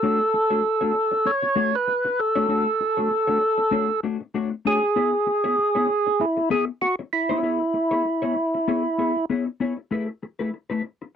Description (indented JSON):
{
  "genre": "funk",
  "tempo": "97 BPM",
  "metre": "4/4",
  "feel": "swing 56% on 16ths",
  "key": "unclear",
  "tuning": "A4 = 439 Hz",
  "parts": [
    { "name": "percussive tonewheel organ", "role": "melody", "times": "0.0-9.3 s", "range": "E4 to C#5", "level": "-20 LUFS", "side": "right 1 dB", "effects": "slow rotary speaker" },
    { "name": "mellow electric guitar", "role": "accompaniment", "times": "0.0-11.1 s", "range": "A3 to C#5", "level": "-26 LUFS", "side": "left 5 dB", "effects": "analog chorus" }
  ],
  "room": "light reverb",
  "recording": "dry, close 1970s-style studio recording",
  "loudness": "-20 LUFS",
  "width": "side -8 dB against mid",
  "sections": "0.0-9.9 A section; 9.9-11.2 B section",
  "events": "none",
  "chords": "0.0 Bm9/A (rootless); 5.0 C#m7; 9.9 Eadd11/A"
}